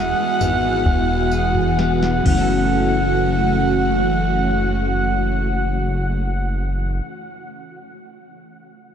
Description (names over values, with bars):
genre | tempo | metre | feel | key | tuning
dream pop | 62-68 BPM | 4/4 | straight | F# minor | A4 = 437 Hz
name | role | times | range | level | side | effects
growling clarinet | melody | 0.0-7.0 s | F#5 | -23 LUFS | right 1 dB | ping-pong delay
ensemble organ-string | sustained chords | 0.0-7.0 s | E3 to F#4 | -23 LUFS | right 1 dB | ensemble chorus
clean electric guitar | arpeggios | 0.0-7.2 s | F#2 to A4 | -25 LUFS | left 4 dB | lush chorus, ping-pong delay
chorused synth bass | bass | 0.0-7.0 s | E1 to G#1 | -22 LUFS | equal | none
soft vintage rhythm box | drums | 0.4-2.5 s | crash cymbal, kick drum, snare drum, tambourine, toms | -24 LUFS | equal | none
room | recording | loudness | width
wet huge ambient reverb, RT60 8.0 s | dreamy mix soaked in reverb | -16 LUFS | side -8 dB against mid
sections
0.0-2.7 A section; 2.7-6.6 B section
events
slowing down 0.0-2.7; drum fill 1.8-2.7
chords
0.0 Eadd9; 2.3 F#m7